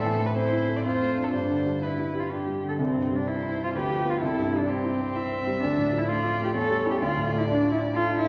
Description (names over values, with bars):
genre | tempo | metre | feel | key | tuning
quick classical-period movement for piano trio | 127 BPM | 3/4 | straight | C major | A4 = 438 Hz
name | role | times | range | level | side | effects
muted violin | melody | 0.0-8.3 s | G4 to E5 | -36 LUFS | equal | none
muted cello | second line | 0.0-8.3 s | C4 to A4 | -30 LUFS | equal | none
warm baby grand piano | accompaniment | 0.0-8.3 s | C2 to A4 | -29 LUFS | equal | none
room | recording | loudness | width
wet scoring stage reverb, RT60 1.9 s | none | -26 LUFS | mono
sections
0.0-2.8 A section; 2.8-8.3 B section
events
none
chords
0.0 Am; 0.8 Dm7/F; 1.3 G; 2.8 C; 3.7 Bdim/D; 4.2 C; 5.6 Dm; 6.6 C#dim/E; 7.0 Dm